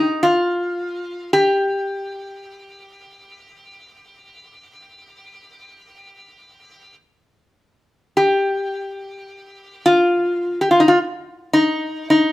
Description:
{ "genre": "caucasian folk, Caucasian lament", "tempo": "53 BPM", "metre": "4/4", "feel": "rubato", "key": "unclear", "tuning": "A4 = 441 Hz", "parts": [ { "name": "metal-body resonator slide guitar", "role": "solo", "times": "0.0-12.3 s", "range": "Eb4 to G4", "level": "-16 LUFS", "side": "left 1 dB", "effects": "none" } ], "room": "wet stone room reverb, RT60 1.0 s", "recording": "band playing live in one room", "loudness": "-16 LUFS", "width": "side -17 dB against mid", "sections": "0.0-8.2 A section; 8.2-12.3 B section", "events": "none", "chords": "none" }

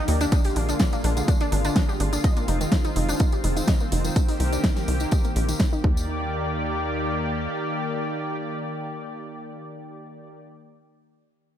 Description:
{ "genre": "progressive house", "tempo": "125 BPM", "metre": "4/4", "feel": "straight", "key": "Eb major", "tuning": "A4 = 438 Hz", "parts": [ { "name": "lush unison pad", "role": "sustained chords", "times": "0.0-10.4 s", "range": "D3 to D5", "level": "-29 LUFS", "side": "left 1 dB", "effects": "chorus, vintage 12-bit sampler grit, sidechain pumping" }, { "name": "wide unison pluck", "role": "arpeggios", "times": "0.0-6.3 s", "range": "D3 to Eb5", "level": "-29 LUFS", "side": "equal", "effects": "cassette tape, sidechain pumping, ping-pong delay" }, { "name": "tight sequencer bass", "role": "bass", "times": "0.1-7.5 s", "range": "F1 to Eb2", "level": "-25 LUFS", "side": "equal", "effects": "sidechain pumping" }, { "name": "pop drum kit", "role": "drums", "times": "0.1-5.7 s", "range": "hi-hat, snare drum", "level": "-29 LUFS", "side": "equal", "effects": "overdrive, sidechain pumping on hats, sidechain pumping on cymbals" }, { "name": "tambourine", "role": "percussion", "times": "0.2-6.1 s", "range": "none", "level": "-36 LUFS", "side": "left 3 dB", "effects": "none" }, { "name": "electronic kick drum", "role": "drums", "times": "0.3-5.9 s", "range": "none", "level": "-22 LUFS", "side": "equal", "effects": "overdrive" } ], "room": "light reverb", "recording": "none", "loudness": "-21 LUFS", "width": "side -10 dB against mid", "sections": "0.0-6.1 A section; 6.1-9.9 B section", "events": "filter sweep on synth pluck 0.0-6.1", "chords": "0.3 Bb7; 2.2 Fm7; 4.2 Cm7; 5.8 Ebmaj7" }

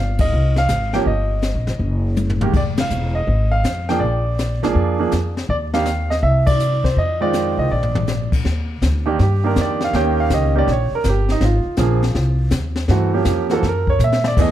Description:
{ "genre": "jazz piano trio", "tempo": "162 BPM", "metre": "4/4", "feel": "swing 66% on 8ths", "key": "Eb major", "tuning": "A4 = 440 Hz", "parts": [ { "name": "clear grand piano", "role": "melody", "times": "0.0-14.5 s", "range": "Eb3 to G5", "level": "-20 LUFS", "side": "right 3 dB", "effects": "plate reverb" }, { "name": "upright bass", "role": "bass", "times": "0.0-14.5 s", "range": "Fb1 to Bb2", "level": "-19 LUFS", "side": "equal", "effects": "none" }, { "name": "jazz brush drum kit", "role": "drums", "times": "0.2-14.5 s", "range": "brushed snare drum, crash cymbal, hi-hat, kick drum, ride cymbal, snare drum, toms", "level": "-23 LUFS", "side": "left 2 dB", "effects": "none" } ], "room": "light reverb", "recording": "none", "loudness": "-16 LUFS", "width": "side -12 dB against mid", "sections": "0.0-8.5 A section; 8.5-14.5 B section", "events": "band accent 0.1, 2.7, 6.4; drum fill 2.2-2.5, 7.7-8.1, 14.0-14.4; grand piano solo 8.5-14.5", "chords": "0.0 Ab6; 1.1 Eb/G; 1.8 N.C.; 2.5 Fm7; 4.0 Bb7; 5.5 N.C.; 6.2 Cadd9; 7.0 Fm7; 7.7 Bb; 8.5 Ebmaj7; 9.9 Eb7; 11.4 Ab69; 12.9 Gm7b5; 13.6 Gb" }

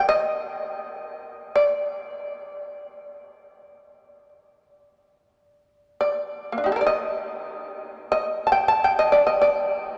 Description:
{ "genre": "japanese traditional, Japanese chamber music", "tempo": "free time", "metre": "none", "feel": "none", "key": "unclear", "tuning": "A4 = 440 Hz", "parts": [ { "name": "shamisen", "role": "solo", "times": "0.0-10.0 s", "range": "Bb3 to A5", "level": "-24 LUFS", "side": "equal", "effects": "none" } ], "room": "wet cathedral reverb, RT60 6.4 s", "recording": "none", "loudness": "-23 LUFS", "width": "mono", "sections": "0.0-10.0 A section", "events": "none", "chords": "none" }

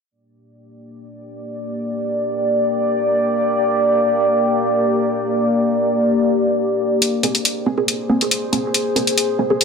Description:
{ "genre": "deep dubstep", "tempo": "free time", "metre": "none", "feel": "none", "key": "G phrygian", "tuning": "A4 = 440 Hz", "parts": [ { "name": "deep dark ambient pad", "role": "sustained chords", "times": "1.4-9.6 s", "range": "Bb3 to D5", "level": "-17 LUFS", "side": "equal", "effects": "chorus, built-in reverb" }, { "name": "electronic hi-hat", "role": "drums", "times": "7.0-9.6 s", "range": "none", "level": "-17 LUFS", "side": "left 1 dB", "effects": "small room ambience" }, { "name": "filtered dub chord stab", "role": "stabs", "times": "7.2-9.6 s", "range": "Bb3 to Ab4", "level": "-20 LUFS", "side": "right 2 dB", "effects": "phaser, dub echo" } ], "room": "moderate echo chamber reverb, RT60 1.8 s, digital ambience", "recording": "none", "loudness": "-16 LUFS", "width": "side -5 dB against mid", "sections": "0.1-9.6 A section", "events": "none", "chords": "0.1 Gm; 7.0 Abadd9" }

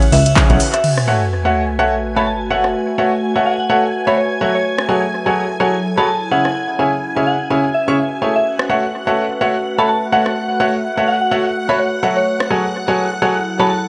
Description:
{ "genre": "piano house", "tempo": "126 BPM", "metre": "4/4", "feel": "swing 57% on 16ths", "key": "unclear", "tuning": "A4 = 441 Hz", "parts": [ { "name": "string machine, violins", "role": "sustained chords", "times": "0.0-13.9 s", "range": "F#5 to G#6", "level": "-28 LUFS", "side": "equal", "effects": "ensemble chorus, sidechain pumping" }, { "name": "house drum kit", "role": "drums", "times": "0.0-12.5 s", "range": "crash cymbal, handclaps, hi-hat, rim click", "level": "-25 LUFS", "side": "equal", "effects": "overdrive, analog delay" }, { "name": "warbly tape-like pad", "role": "texture", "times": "0.1-13.9 s", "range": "F#3 to E5", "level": "-26 LUFS", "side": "equal", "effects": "chorus, built-in reverb, phaser, sidechain pumping" }, { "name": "soft synth bell", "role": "melody", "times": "0.1-13.8 s", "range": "C#5 to A5", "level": "-23 LUFS", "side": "equal", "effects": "chorus, analog delay" }, { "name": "plucky analog bass", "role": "bass", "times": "0.1-0.6 s", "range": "B1 to C#2", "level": "-16 LUFS", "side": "equal", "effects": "sidechain pumping" }, { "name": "open jazz drum kit", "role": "drums", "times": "0.1-0.7 s", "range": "hi-hat, shaker, snare drum", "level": "-33 LUFS", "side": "equal", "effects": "sidechain pumping on hats, high-pass filter on hats, high-pass filter on snare, sidechain pumping on perc, high-pass filter on perc, high-pass filter on room" }, { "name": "bright baby grand piano", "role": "riff", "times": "0.4-13.7 s", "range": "C#3 to C#6", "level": "-20 LUFS", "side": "equal", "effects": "sidechain pumping, analog delay" }, { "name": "electronic kick drum", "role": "drums", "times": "0.4-0.5 s", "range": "none", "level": "-16 LUFS", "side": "equal", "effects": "overdrive" }, { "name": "sub drop", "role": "sound effects", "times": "0.8-2.7 s", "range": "none", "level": "-23 LUFS", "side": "equal", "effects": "none" } ], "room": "moderate plate reverb, RT60 1.8 s, studio reverb", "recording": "echo-heavy mix, nothing above 10.3 kHz", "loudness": "-16 LUFS", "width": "mono", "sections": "0.8-13.9 A section", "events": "band accent 0.4; impact 0.8-2.7", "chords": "0.0 C#m; 0.8 F#madd9; 6.3 C#m; 8.5 A6; 12.3 F#madd9" }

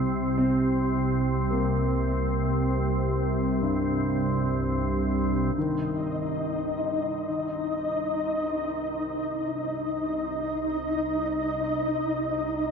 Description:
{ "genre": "dark ambient drone", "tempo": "free time", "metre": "none", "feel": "none", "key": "C minor", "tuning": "A4 = 440 Hz", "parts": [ { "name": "organ-like drone", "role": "drone", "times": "0.0-12.7 s", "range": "C2 to C3", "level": "-27 LUFS", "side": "right 1 dB", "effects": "ensemble chorus, built-in reverb" }, { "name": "dark baby grand piano", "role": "arpeggios", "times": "0.4-12.7 s", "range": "G2 to C4", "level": "-31 LUFS", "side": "equal", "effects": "ping-pong delay" }, { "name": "flickering grainy texture", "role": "texture", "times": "6.0-12.7 s", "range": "Eb4 to Eb5", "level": "-27 LUFS", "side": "left 1 dB", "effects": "built-in reverb" } ], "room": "wet cathedral reverb, RT60 6.3 s", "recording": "dark, warm production", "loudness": "-24 LUFS", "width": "side -6 dB against mid", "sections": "0.0-5.6 A section; 5.6-12.7 B section", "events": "fade-in on synth drone 5.6-12.7", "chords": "0.0 Cm7" }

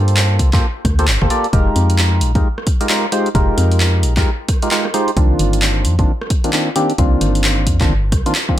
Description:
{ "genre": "UK garage, two-step garage", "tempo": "132 BPM", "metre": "4/4", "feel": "swing 61% on 16ths", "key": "unclear", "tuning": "A4 = 442 Hz", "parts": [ { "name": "percussive organ stab", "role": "stabs", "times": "0.0-8.6 s", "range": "Eb3 to D5", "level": "-19 LUFS", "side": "equal", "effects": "chorus, ping-pong delay" }, { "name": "organ-like FM bass", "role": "bass", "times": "0.0-8.2 s", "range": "F1 to G2", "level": "-15 LUFS", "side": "equal", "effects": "tube saturation" }, { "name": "punchy analog drum machine", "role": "drums", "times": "0.1-8.5 s", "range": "handclaps, hi-hat, rim click", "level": "-20 LUFS", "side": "equal", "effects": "overdrive" }, { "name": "electronic kick drum", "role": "drums", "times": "0.4-8.6 s", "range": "none", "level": "-16 LUFS", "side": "equal", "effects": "overdrive" } ], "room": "little or no reverb", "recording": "faint mains hum", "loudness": "-13 LUFS", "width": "side -12 dB against mid", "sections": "0.0-8.6 A section", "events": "drum fill 8.3", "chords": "0.0 Gm11; 1.5 Fm11; 5.2 Cm11" }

